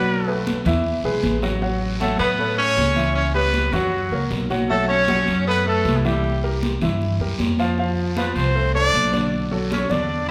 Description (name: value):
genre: Afro-Cuban jazz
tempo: 156 BPM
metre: 4/4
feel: straight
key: unclear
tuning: A4 = 442 Hz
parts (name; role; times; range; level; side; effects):
- breathy trumpet; melody; 0.0-10.3 s; E4 to D5; -25 LUFS; equal; none
- warm baby grand piano; accompaniment; 0.0-10.2 s; D3 to F#5; -27 LUFS; equal; none
- upright bass; bass; 0.0-10.3 s; A1 to A2; -26 LUFS; equal; none
- congas; percussion; 0.1-10.3 s; none; -30 LUFS; equal; none
- guiro; percussion; 0.1-10.3 s; none; -37 LUFS; equal; none
- clear tenor saxophone; second line; 2.0-10.3 s; E3 to D4; -29 LUFS; equal; none
room: wet recital hall reverb, RT60 1.6 s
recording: recorded in a church or concert hall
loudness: -21 LUFS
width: mono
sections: 0.0-1.6 A section; 1.6-10.3 B section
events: trumpet solo 0.0-1.6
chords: 0.1 B5; 0.8 Eadd9; 1.6 A6; 3.2 C#m7b5; 3.9 F#; 4.7 Bsus2; 6.2 C7; 7.8 F; 9.3 Bm7